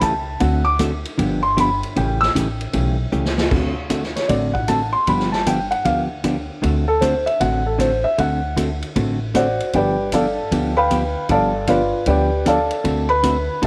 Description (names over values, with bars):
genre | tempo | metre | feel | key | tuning
country, western swing | 154 BPM | 4/4 | swing 66% on 8ths | unclear | A4 = 440 Hz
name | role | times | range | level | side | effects
felt-muted upright piano | melody | 0.0-13.7 s | F4 to E6 | -22 LUFS | equal | none
hollow-body jazz guitar | accompaniment | 0.0-13.7 s | C#3 to A4 | -24 LUFS | equal | none
upright bass | bass | 0.0-13.7 s | G1 to D2 | -26 LUFS | equal | none
swinging big-band drum kit | drums | 0.0-13.7 s | crash cymbal, hi-hat, kick drum, ride cymbal, snare drum | -30 LUFS | equal | none
room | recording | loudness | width
moderate spring reverb, RT60 1.7 s | none | -19 LUFS | mono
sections
0.0-3.5 A section; 3.5-13.7 A section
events
felt piano solo 0.0-3.5, 3.5-13.7; drum fill 3.1-3.5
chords
0.4 D7; 1.2 G7; 2.0 A9; 3.5 D7; 5.1 G7; 6.6 D7; 9.7 G9; 12.8 D7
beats
0.02 | 0.40 0.79 1.18 1.57 | 1.96 2.35 2.74 3.12 | 3.51 3.90 4.29 4.68 | 5.07 5.46 5.85 6.24 | 6.62 7.01 7.40 7.79 | 8.18 8.57 8.96 9.35 | 9.73 10.12 10.51 10.90 | 11.29 11.68 12.07 12.46 | 12.85 13.23 13.62